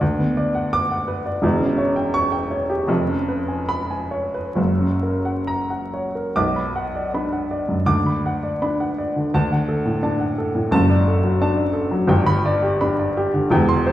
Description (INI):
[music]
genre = classical, romantic character piece for solo piano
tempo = 64-90 BPM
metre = 2/4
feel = rubato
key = B minor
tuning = A4 = 442 Hz
[part]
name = warm baby grand piano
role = solo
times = 0.0-13.9 s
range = E1 to D6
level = -18 LUFS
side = equal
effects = none
[sound]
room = wet recital hall reverb, RT60 1.4 s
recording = heard from further back in the room, vinyl crackle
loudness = -18 LUFS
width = side -13 dB against mid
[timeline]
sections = 0.0-6.4 A section; 6.4-13.9 B section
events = none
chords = 0.0 Bm/D; 1.4 C#dim/E; 2.9 C#7/E#; 4.6 F#; 6.4 Bm; 7.9 Bm/D; 9.3 D; 10.7 D/F#; 12.1 G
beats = | 0.01 0.72 | 1.43 2.15 | 2.89 3.69 | 4.57 5.48 | 6.37 7.14 | 7.88 8.62 | 9.33 10.03 | 10.73 11.41 | 12.10 12.82 | 13.52